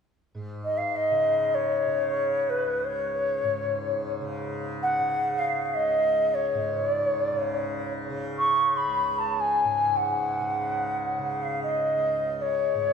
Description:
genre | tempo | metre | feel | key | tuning
indian classical | free time | none | none | unclear | A4 = 441 Hz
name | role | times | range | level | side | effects
tanpura | drone | 0.3-12.9 s | C#2 to C#3 | -34 LUFS | equal | none
reedy bansuri | melody | 0.6-12.9 s | B4 to C#6 | -24 LUFS | equal | none
room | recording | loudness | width
wet church reverb, RT60 2.7 s | recorded in a church or concert hall | -24 LUFS | side -6 dB against mid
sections
0.3-12.9 A section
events
none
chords
none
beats
free time

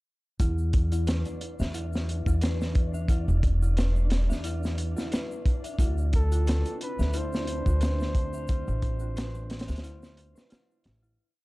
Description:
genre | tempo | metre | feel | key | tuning
trip hop | 89 BPM | 4/4 | swing 55% on 16ths | unclear | A4 = 440 Hz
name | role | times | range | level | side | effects
dark detuned synth bell | arpeggios | 0.4-11.2 s | E4 to E5 | -38 LUFS | left 2 dB | chorus, phaser, tape echo
upright bass | bass | 0.4-11.2 s | E1 to E2 | -27 LUFS | equal | none
crunchy breakbeat drum kit | drums | 0.4-11.0 s | hi-hat, kick drum, snare drum | -28 LUFS | equal | none
tube shaker | percussion | 0.4-11.2 s | none | -53 LUFS | equal | none
flickering grainy texture | texture | 0.7-11.2 s | D4 to D5 | -45 LUFS | right 2 dB | built-in reverb
deep dark ambient pad | sustained chords | 6.8-11.1 s | C4 to D4 | -41 LUFS | equal | chorus, built-in reverb
trumpet with bucket mute | melody | 6.1-10.5 s | A4 to C5 | -37 LUFS | right 1 dB | tape echo
room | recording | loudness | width
studio reverb | dark, warm production | -25 LUFS | side -21 dB against mid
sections
0.4-11.2 groove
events
fade-out 7.6-11.2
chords
0.4 E5; 5.8 Dm7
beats
| 0.40 1.07 1.75 2.42 | 3.09 3.77 4.44 5.12 | 5.79 6.46 7.14 7.81 | 8.49 9.16 9.84 10.51

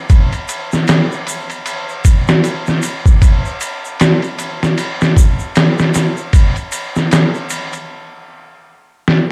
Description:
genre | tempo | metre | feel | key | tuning
trip hop | 77 BPM | 4/4 | swing 59% on 16ths | none | none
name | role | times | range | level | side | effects
trip hop sampler-style drum kit | drums | 0.1-9.3 s | kick drum, ride cymbal, snare drum | -15 LUFS | equal | overdrive
egg shaker | percussion | 0.1-7.9 s | none | -31 LUFS | equal | none
room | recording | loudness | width
little or no reverb | dark, warm production | -15 LUFS | mono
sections
0.0-9.3 A section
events
stop 7.9-9.3; drum fill 9.1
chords
none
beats
| 0.10 0.88 1.66 2.44 | 3.22 4.00 4.78 5.56 | 6.34 7.12 7.90 8.68

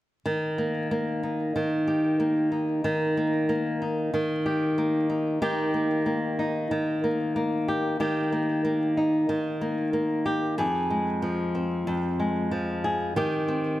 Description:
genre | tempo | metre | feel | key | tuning
folktronica | 93 BPM | 4/4 | swing 56% on 16ths | Eb major | A4 = 441 Hz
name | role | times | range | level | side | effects
flamenco guitar | solo | 0.3-13.8 s | F2 to Ab4 | -24 LUFS | equal | none
room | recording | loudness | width
moderate concert hall reverb, RT60 2.0 s | vinyl crackle | -24 LUFS | side -15 dB against mid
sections
0.3-5.4 A section; 5.4-13.8 B section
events
none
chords
0.3 Eb; 10.6 Fm; 13.2 Cm/Eb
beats
| 0.26 0.91 1.55 2.20 | 2.84 3.49 4.13 4.78 | 5.42 6.07 6.71 7.36 | 8.00 8.65 9.29 9.94 | 10.58 11.23 11.87 12.52 | 13.16

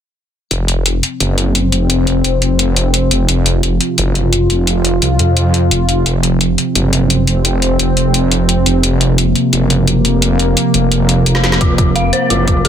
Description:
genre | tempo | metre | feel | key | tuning
dark technical drum and bass | 173 BPM | 4/4 | straight | unclear | A4 = 441 Hz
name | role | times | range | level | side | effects
sweeping resonant pad | sustained chords | 0.5-12.7 s | C3 to F4 | -15 LUFS | right 1 dB | chorus, sidechain pumping
snarling distorted saw bass | bass | 0.5-12.7 s | F1 to F2 | -15 LUFS | equal | distortion, overdrive, sidechain pumping
drum and bass drum kit | drums | 0.5-12.7 s | hi-hat, snare drum | -17 LUFS | left 1 dB | none
dark detuned synth bell | arpeggios | 11.6-12.7 s | F4 to F5 | -16 LUFS | equal | chorus, sidechain pumping, ping-pong delay
electronic kick drum | drums | 11.6-12.5 s | none | -13 LUFS | equal | none
room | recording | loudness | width
light reverb, digital ambience | dense, heavily limited modern master | -11 LUFS | side -9 dB against mid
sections
0.5-12.7 A section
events
drum fill 11.3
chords
0.5 F5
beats
| 0.51 0.86 1.21 1.55 | 1.90 2.25 2.59 2.94 | 3.29 3.63 3.98 4.33 | 4.67 5.02 5.37 5.71 | 6.06 6.41 6.75 7.10 | 7.45 7.79 8.14 8.49 | 8.84 9.18 9.53 9.88 | 10.22 10.57 10.92 11.26 | 11.61 11.96 12.30 12.65

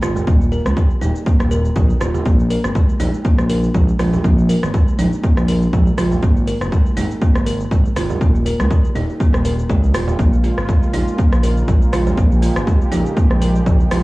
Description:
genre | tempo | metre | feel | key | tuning
afro house | 121 BPM | 4/4 | swing 55% on 16ths | Bb dorian | A4 = 442 Hz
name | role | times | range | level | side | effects
kalimba | arpeggios | 0.0-14.0 s | G3 to Bb4 | -22 LUFS | equal | sidechain pumping, cassette tape, analog delay
smooth gliding synth bass | bass | 0.0-14.0 s | Eb1 to Db2 | -18 LUFS | equal | sidechain pumping
afro-pop drum kit | drums | 0.0-14.0 s | cabasa, hi-hat, rim click | -27 LUFS | left 1 dB | cassette tape
congas | percussion | 0.0-14.0 s | none | -28 LUFS | right 5 dB | none
electronic kick drum | drums | 0.3-13.8 s | none | -15 LUFS | equal | overdrive, cassette tape
warm analog pad | sustained chords | 10.2-14.0 s | Db3 to G4 | -26 LUFS | equal | chorus, tremolo, vintage 12-bit sampler grit, sidechain pumping, cassette tape
room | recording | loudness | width
light reverb | home recording on cassette, small room ambience | -14 LUFS | side -20 dB against mid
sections
0.0-14.0 A section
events
none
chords
0.3 Eb; 2.3 Bb5; 6.2 Ab5; 8.2 Eb7; 10.2 Bbm7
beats
| 0.28 0.77 1.27 1.76 | 2.26 2.75 3.25 3.75 | 4.24 4.74 5.24 5.73 | 6.23 6.72 7.22 7.71 | 8.21 8.71 9.20 9.70 | 10.19 10.69 11.19 11.68 | 12.18 12.67 13.17 13.66

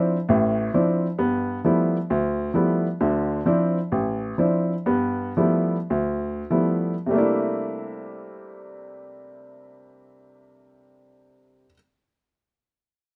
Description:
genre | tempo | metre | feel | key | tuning
solo jazz | 93-133 BPM | 4/4 | swing 66% on 8ths | C mixolydian | A4 = 440 Hz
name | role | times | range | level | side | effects
warm upright piano | solo | 0.0-11.8 s | A1 to E4 | -24 LUFS | equal | none
room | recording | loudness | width
moderate studio reverb, RT60 1.0 s | none | -23 LUFS | mono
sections
0.0-7.1 A section; 7.1-12.3 B section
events
slowing down 3.0-7.1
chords
0.0 Dm9; 1.2 G13; 3.0 Dm9; 4.9 G13; 7.1 C13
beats
0.29 0.74 | 1.19 1.64 2.10 2.54 | 3.00 3.45 3.91 4.38 | 4.88 5.39 5.93 6.50 | 7.12 7.77 8.41 9.05 | 9.70 10.34 10.99 11.63

